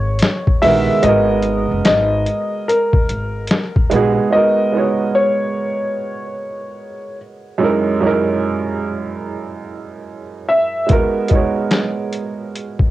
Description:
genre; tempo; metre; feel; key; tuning
lo-fi hip hop; 73 BPM; 4/4; swing 63% on 16ths; G# minor; A4 = 438 Hz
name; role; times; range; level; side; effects
felt-muted upright piano; melody; 0.0-10.9 s; A#4 to E5; -18 LUFS; left 1 dB; low-pass filter, cassette tape
warm upright piano; accompaniment; 0.0-12.9 s; F#2 to C#5; -19 LUFS; right 4 dB; cassette tape, low-pass filter
upright bass; bass; 0.0-4.2 s; F#1 to A#1; -21 LUFS; left 1 dB; none
boom bap sampler-style drum kit; drums; 0.2-4.2, 10.9-12.9 s; hi-hat, kick drum, snare drum; -16 LUFS; left 1 dB; vintage 12-bit sampler grit, cassette tape
room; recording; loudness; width
moderate studio reverb, RT60 0.5 s; home recording on cassette; -14 LUFS; side -15 dB against mid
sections
0.0-4.3 A section; 4.3-12.9 B section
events
none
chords
0.0 G#m9; 7.6 F#13; 10.9 G#m9

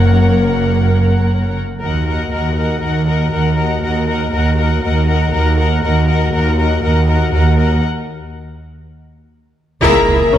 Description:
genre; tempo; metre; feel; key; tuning
cinematic, epic orchestral film score; 120 BPM; 4/4; straight; Eb minor; A4 = 440 Hz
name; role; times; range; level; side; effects
rich symphonic violin section; melody; 0.0-10.4 s; E5 to Gb5; -25 LUFS; left 4 dB; none
rich symphonic violin section; second line; 0.0-10.4 s; Db5 to A#5; -26 LUFS; left 3 dB; none
rich symphonic viola section; accompaniment; 0.0-10.4 s; C#4 to Bb4; -21 LUFS; equal; none
dark French horn section; sustained chords; 0.0-10.4 s; Bb3 to A#4; -21 LUFS; left 4 dB; none
rich symphonic cello section; bass; 0.0-10.4 s; Eb2 to A#3; -18 LUFS; right 2 dB; none
warm symphonic double bass section; bass; 0.0-10.4 s; Gb1 to Eb2; -17 LUFS; right 1 dB; none
impact; sound effects; 9.8-10.4 s; none; -22 LUFS; left 1 dB; none
room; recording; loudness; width
moderate concert hall reverb, RT60 2.2 s; dark, warm production; -12 LUFS; side -11 dB against mid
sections
0.0-1.8 A section; 1.8-9.8 B section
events
break 7.8-9.8; band accent 9.8-10.3; impact 9.8-10.4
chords
0.0 Gb; 1.8 Ebm; 7.8 N.C.; 9.8 C#m

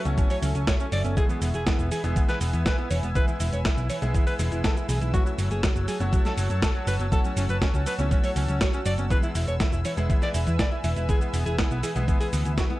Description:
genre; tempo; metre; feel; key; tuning
italo disco; 121 BPM; 4/4; straight; unclear; A4 = 443 Hz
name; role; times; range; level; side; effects
lush unison pad; sustained chords; 0.0-12.8 s; A4 to E6; -35 LUFS; equal; chorus
bright baby grand piano; stabs; 0.0-12.8 s; G#3 to G#4; -36 LUFS; left 2 dB; none
bright alto saxophone; melody; 0.1-12.8 s; F#3 to E5; -32 LUFS; equal; tape echo
warbly dusty pluck; arpeggios; 0.1-12.8 s; E3 to F#4; -34 LUFS; right 2 dB; chorus, tape echo
hollow-body short-scale picked electric bass; bass; 0.1-12.6 s; E1 to F#2; -26 LUFS; equal; none
dusty soul sampler-style drum kit; drums; 0.1-12.8 s; cabasa, hi-hat, snare drum, toms; -31 LUFS; equal; small room ambience
electronic kick drum; drums; 0.2-12.7 s; none; -24 LUFS; equal; small room ambience
room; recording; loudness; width
little or no reverb; dark, warm production; -22 LUFS; side -17 dB against mid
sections
0.0-12.8 A section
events
drum fill 12.6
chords
0.0 F#m7; 1.2 E; 5.1 F#m7; 9.1 E

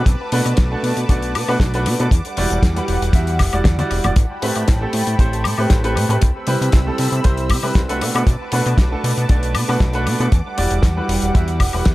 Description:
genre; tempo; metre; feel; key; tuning
nu-disco, nu disco; 117 BPM; 4/4; straight; unclear; A4 = 440 Hz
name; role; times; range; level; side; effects
lush unison pad; sustained chords; 0.0-11.9 s; G3 to E6; -26 LUFS; equal; chorus, sidechain pumping
fat analog bass; bass; 0.0-11.9 s; E1 to C3; -20 LUFS; equal; tube saturation
damped 70s drum kit; drums; 0.1-11.9 s; hi-hat, snare drum, toms, woodblock; -25 LUFS; left 2 dB; analog delay
kick drum; drums; 0.1-11.9 s; none; -14 LUFS; equal; none
clear baby grand piano; accompaniment; 0.3-11.9 s; G3 to E5; -22 LUFS; right 1 dB; sidechain pumping, analog delay
room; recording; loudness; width
small room ambience; echo-heavy mix; -15 LUFS; side -18 dB against mid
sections
0.0-11.9 A section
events
drum fill 3.7-4.2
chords
0.0 Bm7; 2.1 Em9; 4.2 Am9; 6.2 Cmaj7; 8.0 Bm7; 10.3 Em9

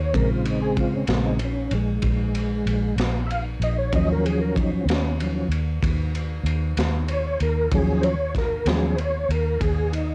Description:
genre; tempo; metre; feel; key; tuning
slow blues; 63 BPM (dotted quarters); 12/8; straight; unclear; A4 = 440 Hz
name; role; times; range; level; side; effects
mellow tonewheel organ; sustained chords; 0.0-10.1 s; Db3 to F5; -26 LUFS; equal; slow rotary speaker, chorus vibrato
vintage muted fingered electric bass; bass; 0.0-10.1 s; Bb1 to Eb2; -27 LUFS; equal; tube saturation
crunchy breakbeat drum kit; drums; 0.1-10.1 s; kick drum, ride cymbal, snare drum; -30 LUFS; equal; cassette tape
room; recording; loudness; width
light reverb; home recording on cassette; -23 LUFS; mono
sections
0.0-10.1 A section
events
tonewheel organ solo 0.0-10.1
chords
0.2 Bbm7; 3.9 Ebm7

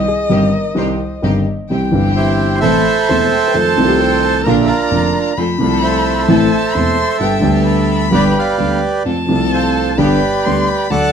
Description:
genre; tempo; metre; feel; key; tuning
tango; 130 BPM; 4/4; rubato; unclear; A4 = 440 Hz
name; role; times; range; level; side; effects
warm violin; second line; 0.0-11.1 s; Eb5 to C6; -22 LUFS; left 3 dB; none
dark concert grand piano; accompaniment; 0.0-11.1 s; E1 to A4; -15 LUFS; equal; none
bright symphonic string section; stabs; 0.0-11.1 s; A3 to Bb4; -25 LUFS; left 1 dB; slapback echo
hollow-body jazz guitar; second line; 0.1-4.3 s; G4 to Eb5; -24 LUFS; left 6 dB; none
bandoneon; melody; 2.2-11.1 s; D4 to F#5; -16 LUFS; right 4 dB; none
room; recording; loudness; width
wet studio reverb, RT60 0.9 s; dark, warm production; -12 LUFS; side -7 dB against mid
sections
0.0-1.7 A section; 1.7-11.1 B section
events
violin solo 0.0-1.7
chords
0.0 Cm; 1.7 C; 2.6 Am; 3.5 F7; 4.5 Bb; 5.4 F; 6.3 Am; 7.2 G; 9.1 F; 10.0 G

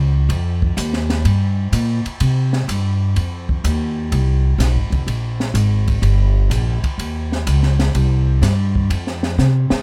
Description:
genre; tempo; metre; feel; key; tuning
jazz, small-group swing and bop; 126 BPM; 4/4; swing 68% on 8ths; unclear; A4 = 438 Hz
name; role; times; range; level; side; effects
upright bass; bass; 0.0-9.7 s; F1 to C3; -18 LUFS; equal; none
open jazz drum kit; drums; 0.3-9.8 s; hi-hat, kick drum, ride cymbal, snare drum; -26 LUFS; equal; none
room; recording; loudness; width
little or no reverb; none; -18 LUFS; mono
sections
0.0-9.8 A section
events
drum fill 9.4-9.8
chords
none

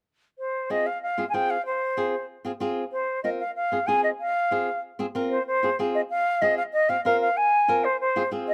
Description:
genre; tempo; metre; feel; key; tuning
latin; 189 BPM; 4/4; straight; F minor; A4 = 440 Hz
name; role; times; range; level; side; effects
concert flute; melody; 0.4-8.5 s; C5 to Ab5; -26 LUFS; equal; slapback echo
flamenco guitar; accompaniment; 0.7-8.5 s; C4 to Bb4; -30 LUFS; equal; slapback echo
room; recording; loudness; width
light reverb; recorded outdoors, with no room sound; -25 LUFS; mono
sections
0.4-5.5 A section; 5.5-8.5 B section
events
none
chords
0.4 Fm

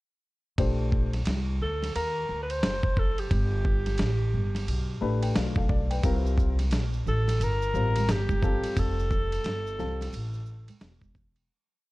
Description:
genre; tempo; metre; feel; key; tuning
hip hop, jazz-hop; 88 BPM; 4/4; swing 62% on 16ths; Bb major; A4 = 442 Hz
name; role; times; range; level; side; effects
dark grand piano; accompaniment; 0.6-10.1 s; G3 to B5; -33 LUFS; left 4 dB; none
upright bass; bass; 0.6-11.5 s; E1 to Eb2; -28 LUFS; equal; none
dusty soul sampler-style drum kit; drums; 0.6-11.5 s; hi-hat, kick drum, ride cymbal, snare drum; -29 LUFS; equal; overdrive
breathy alto saxophone; melody; 1.6-10.8 s; G4 to C5; -31 LUFS; equal; slapback echo
maracas and congas; percussion; 6.0-11.5 s; none; -40 LUFS; right 6 dB; none
room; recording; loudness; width
small room ambience; dark, warm production; -25 LUFS; side -20 dB against mid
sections
0.6-11.5 head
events
grand piano fill 4.7-6.0; fade-out 8.8-11.5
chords
0.6 Bbmaj9; 3.3 G; 6.0 C7sus4; 8.8 Fadd9

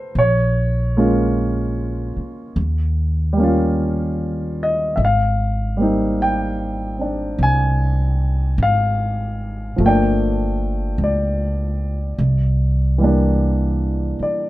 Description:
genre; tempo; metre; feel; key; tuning
jazz ballad; 50 BPM; 4/4; swing 67% on 8ths; unclear; A4 = 442 Hz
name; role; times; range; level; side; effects
warm grand piano; accompaniment; 0.0-14.5 s; E3 to Ab5; -20 LUFS; equal; none
upright bass; bass; 0.2-14.2 s; G1 to Eb2; -19 LUFS; equal; none
room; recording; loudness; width
little or no reverb; dark, warm production; -17 LUFS; side -16 dB against mid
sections
0.0-14.5 A section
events
none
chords
0.2 Bbm7; 2.6 Eb9; 5.0 Abmaj9; 9.8 Gm7; 12.2 C9

